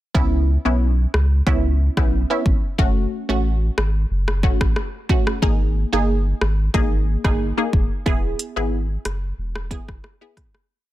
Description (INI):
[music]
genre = dancehall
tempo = 91 BPM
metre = 4/4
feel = straight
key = unclear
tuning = A4 = 439 Hz
[part]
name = analog pluck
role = accompaniment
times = 0.1-10.4 s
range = A3 to G#4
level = -23 LUFS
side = equal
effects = chorus, sidechain pumping
[part]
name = warm sub bass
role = bass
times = 0.1-10.0 s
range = E1 to C#2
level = -20 LUFS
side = equal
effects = none
[part]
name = afro-pop drum kit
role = drums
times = 0.1-10.7 s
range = hi-hat, kick drum, rim click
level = -20 LUFS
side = equal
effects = soft clipping on snare
[sound]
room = digital ambience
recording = dense, heavily limited modern master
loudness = -18 LUFS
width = side -15 dB against mid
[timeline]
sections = 0.1-10.7 verse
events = fade-out 8.1-10.7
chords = 0.1 C#m7; 2.8 F#m; 5.4 G#sus2; 8.1 E